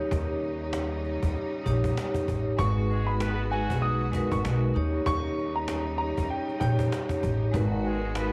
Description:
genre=hip hop, boom-bap hip-hop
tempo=97 BPM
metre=4/4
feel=swing 58% on 16ths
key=unclear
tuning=A4 = 440 Hz
part: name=vibraphone with medium mallets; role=accompaniment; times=0.0-8.3 s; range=G#3 to C#5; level=-33 LUFS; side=equal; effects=high-pass filter, low-pass filter
part: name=bright studio string section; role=sustained chords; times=0.0-8.3 s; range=B2 to F#4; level=-41 LUFS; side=equal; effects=high-pass filter, low-pass filter
part: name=upright bass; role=bass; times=0.0-8.3 s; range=G#1 to D#2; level=-31 LUFS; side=equal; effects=none
part: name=cajon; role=drums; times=0.1-8.3 s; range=none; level=-37 LUFS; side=equal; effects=cassette tape
part: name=dark upright piano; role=melody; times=2.6-6.9 s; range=G5 to D#6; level=-36 LUFS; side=equal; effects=high-pass filter, low-pass filter, tape echo
part: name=warm trumpet section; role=stabs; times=2.9-4.1, 7.8-8.3 s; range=F#3 to B4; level=-41 LUFS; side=equal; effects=high-pass filter, low-pass filter, tape echo
room=studio ambience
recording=home recording on cassette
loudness=-28 LUFS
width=mono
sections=0.0-8.3 A section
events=none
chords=0.0 D#7; 2.6 G#m7; 4.8 D#7; 7.5 G#m7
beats=| 0.11 0.73 1.35 1.97 | 2.59 3.20 3.82 4.44 | 5.06 5.68 6.30 6.92 | 7.53 8.15

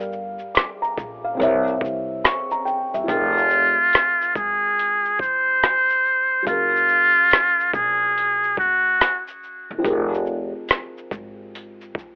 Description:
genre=lo-fi hip hop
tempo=71 BPM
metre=4/4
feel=swing 65% on 16ths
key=unclear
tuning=A4 = 439 Hz
part: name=felt-muted upright piano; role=accompaniment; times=0.0-12.2 s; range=C3 to D6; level=-24 LUFS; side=equal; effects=none
part: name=upright bass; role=bass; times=0.0-12.2 s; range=F1 to C2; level=-30 LUFS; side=equal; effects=none
part: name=dusty soul sampler-style drum kit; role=drums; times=0.0-12.2 s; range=hi-hat, kick drum, rim click, shaker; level=-20 LUFS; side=equal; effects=none
part: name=trumpet with metal mute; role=melody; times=3.1-9.2 s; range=F4 to C5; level=-17 LUFS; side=equal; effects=none
room=light reverb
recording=rough home demo mix, cassette tape, telephone sound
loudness=-17 LUFS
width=side -33 dB against mid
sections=0.0-3.1 A section; 3.1-12.2 B section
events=none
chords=0.0 Gm7; 1.4 C7b9; 3.1 Fm11; 6.5 Gbmaj9; 9.8 Fm11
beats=0.55 1.39 2.24 | 3.08 3.93 4.77 5.62 | 6.46 7.31 8.15 9.00 | 9.84 10.69 11.53

